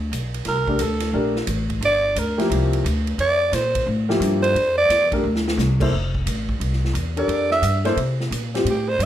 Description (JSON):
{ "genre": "modal jazz", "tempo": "176 BPM", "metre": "4/4", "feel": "swing 64% on 8ths", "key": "F major from 5.9 s", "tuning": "A4 = 440 Hz", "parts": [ { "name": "upright bass", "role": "bass", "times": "0.0-9.1 s", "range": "F1 to C3", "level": "-23 LUFS", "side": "equal", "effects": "none" }, { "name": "swinging big-band drum kit", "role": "drums", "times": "0.1-9.1 s", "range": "crash cymbal, hi-hat, kick drum, ride cymbal, snare drum", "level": "-28 LUFS", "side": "right 2 dB", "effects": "none" }, { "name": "growling alto saxophone", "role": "melody", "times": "0.5-5.1, 7.2-9.1 s", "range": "G4 to E5", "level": "-20 LUFS", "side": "right 2 dB", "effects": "none" }, { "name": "warm concert grand piano", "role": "accompaniment", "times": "0.7-8.7 s", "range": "F3 to C5", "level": "-23 LUFS", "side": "left 2 dB", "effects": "none" } ], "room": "moderate large studio reverb, RT60 0.9 s", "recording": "none", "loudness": "-18 LUFS", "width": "side -11 dB against mid", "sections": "0.0-5.9 A section; 5.9-9.1 A section", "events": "alto saxophone solo 0.0-9.1; drum fill 5.2-5.6", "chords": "0.5 C9sus4; 5.9 Fmaj9" }